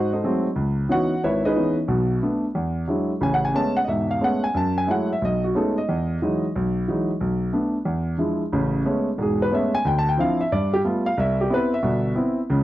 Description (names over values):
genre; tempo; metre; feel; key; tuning
jazz; 181 BPM; 4/4; swing 63% on 8ths; E major; A4 = 440 Hz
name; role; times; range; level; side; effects
warm grand piano; solo; 0.0-12.6 s; E1 to A5; -20 LUFS; equal; none
room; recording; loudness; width
small room reverb; dry, close 1970s-style studio recording; -20 LUFS; side -15 dB against mid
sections
0.0-8.5 A section; 8.5-12.6 B section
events
none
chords
0.0 G#7b9; 0.6 C#m9; 1.9 Bm7; 2.5 E9; 3.2 Amaj9; 4.5 F#m9; 5.2 B13; 5.9 Emaj9; 7.2 Bm7; 7.9 E7b9; 8.5 Amaj9; 9.8 Dm9; 10.5 G9; 11.2 Cmaj7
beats
0.23 | 0.56 0.89 1.22 1.55 | 1.89 2.22 2.55 2.88 | 3.21 3.55 3.88 4.21 | 4.54 4.87 5.21 5.54 | 5.87 6.20 6.53 6.87 | 7.20 7.53 7.86 8.19 | 8.53 8.86 9.19 9.52 | 9.85 10.18 10.51 10.84 | 11.17 11.51 11.84 12.17 | 12.50